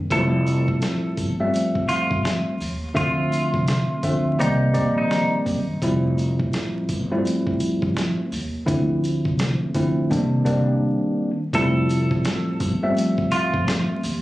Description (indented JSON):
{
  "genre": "hip hop, boom-bap hip-hop",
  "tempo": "84 BPM",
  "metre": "4/4",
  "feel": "swing 61% on 16ths",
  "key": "F major",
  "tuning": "A4 = 443 Hz",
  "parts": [
    { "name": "upright bass", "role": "bass", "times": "0.0-14.2 s", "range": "F1 to C3", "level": "-26 LUFS", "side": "equal", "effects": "none" },
    { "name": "semi-hollow electric guitar", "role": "melody", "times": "0.1-5.3, 11.5-13.6 s", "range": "Eb4 to A4", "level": "-26 LUFS", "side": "right 1 dB", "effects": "high-pass filter, low-pass filter, tape echo" },
    { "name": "tine electric piano", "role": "accompaniment", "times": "0.1-14.0 s", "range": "D3 to E5", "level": "-21 LUFS", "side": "equal", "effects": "cassette tape, high-pass filter, low-pass filter" },
    { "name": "dusty soul sampler-style drum kit", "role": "drums", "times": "0.1-14.2 s", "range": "hi-hat, kick drum, rim click, snare drum", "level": "-28 LUFS", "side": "equal", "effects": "none" },
    { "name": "sleigh bells", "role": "percussion", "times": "0.1-14.2 s", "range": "none", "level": "-41 LUFS", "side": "right 2 dB", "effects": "none" }
  ],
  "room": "light reverb",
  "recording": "recorded on a phone in the room, club reverb, vinyl crackle",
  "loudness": "-19 LUFS",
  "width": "side -16 dB against mid",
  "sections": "0.0-11.5 A section; 11.5-14.2 B section",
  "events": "break 10.8-11.5",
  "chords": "0.1 Fmaj9; 3.0 Dm9; 4.4 Cm9; 5.8 Fmaj9; 8.7 Dm9; 10.1 Cm9; 11.5 Fmaj9"
}